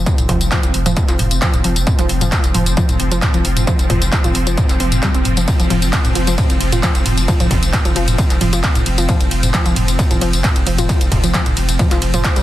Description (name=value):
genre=driving peak-time techno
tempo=133 BPM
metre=4/4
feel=straight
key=unclear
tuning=A4 = 436 Hz
part: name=warbly dusty pluck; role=riff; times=0.0-12.4 s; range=F3 to C4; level=-22 LUFS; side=equal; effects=chorus, sidechain pumping, digital delay
part: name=saturated sub bass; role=bass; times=0.0-12.4 s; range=F1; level=-19 LUFS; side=equal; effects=tube saturation, sidechain pumping, low-pass filter
part: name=swarming drone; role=drone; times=0.0-12.4 s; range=F3 to C4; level=-23 LUFS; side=equal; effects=built-in reverb, sidechain pumping
part: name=electronic kick drum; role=drums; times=0.1-12.3 s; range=none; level=-16 LUFS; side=equal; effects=distortion, overdrive
part: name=techno drum kit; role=drums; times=0.1-12.4 s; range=handclaps, hi-hat, ride cymbal, tambourine, toms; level=-20 LUFS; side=equal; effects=overdrive, sidechain pumping on hats, sidechain pumping on cymbals, sidechain pumping on perc, sidechain pumping on toms
room=digital ambience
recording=dense, heavily limited modern master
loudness=-13 LUFS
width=side -14 dB against mid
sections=0.0-12.4 A section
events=none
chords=0.0 F5